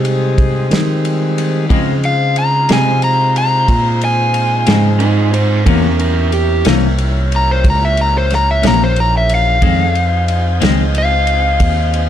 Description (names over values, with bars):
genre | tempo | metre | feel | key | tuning
slow blues | 61 BPM (dotted quarters) | 12/8 | straight | F minor | A4 = 440 Hz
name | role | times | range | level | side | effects
overdriven semi-hollow guitar | melody | 0.0-12.1 s | C5 to Bb5 | -16 LUFS | left 2 dB | plate reverb
tonewheel organ | sustained chords | 0.0-12.1 s | E3 to G5 | -23 LUFS | equal | slow rotary speaker
bell-like tine electric piano | bass | 0.0-12.1 s | Bb1 to Eb3 | -15 LUFS | equal | none
warm soul drum kit | drums | 0.0-12.1 s | kick drum, ride cymbal, snare drum | -19 LUFS | equal | none
clean electric guitar | accompaniment | 1.7-10.8 s | F2 to Db4 | -18 LUFS | left 5 dB | tremolo
edgy saxophone section | sustained chords | 1.7-12.1 s | E3 to Eb5 | -27 LUFS | right 3 dB | none
overdriven slide guitar | second line | 5.0-6.6 s | Db4 to C5 | -17 LUFS | right 7 dB | none
room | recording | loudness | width
light reverb | dark, warm production | -11 LUFS | side -10 dB against mid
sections
0.0-12.1 A section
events
none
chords
0.0 Fm7 (rootless); 1.7 Dbmaj7; 5.7 C7b9; 9.6 Fm7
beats
0.71 | 1.70 2.69 3.68 4.67 | 5.66 6.65 7.64 8.63 | 9.62 10.61 11.60